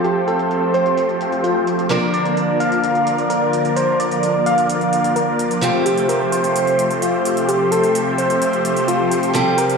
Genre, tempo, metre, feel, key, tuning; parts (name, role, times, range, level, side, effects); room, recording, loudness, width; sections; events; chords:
EDM, festival progressive house; 129 BPM; 4/4; straight; F major; A4 = 444 Hz
soft struck synth lead; melody; 0.0-9.8 s; F4 to F5; -19 LUFS; equal; chorus, cassette tape, digital delay
picked acoustic archtop guitar; accompaniment; 0.0-9.8 s; F3 to Bb4; -26 LUFS; right 4 dB
lush unison pad; sustained chords; 0.0-9.8 s; C3 to E5; -24 LUFS; left 2 dB; chorus
big supersaw lead; riff; 0.0-9.8 s; F3 to D5; -20 LUFS; right 1 dB; phaser, low-pass filter, digital delay
electronic hi-hat; drums; 0.0-9.8 s; -31 LUFS; right 3 dB; low-pass filter on hats, low-pass filter on snare, low-pass filter on cymbals
moderate lush hall reverb, RT60 2.1 s; played on a big sound system in a bare room, large studio reverb; -15 LUFS; side -5 dB against mid
0.0-9.8 A section
0.0 Fadd9; 1.9 Bb; 5.6 Fadd9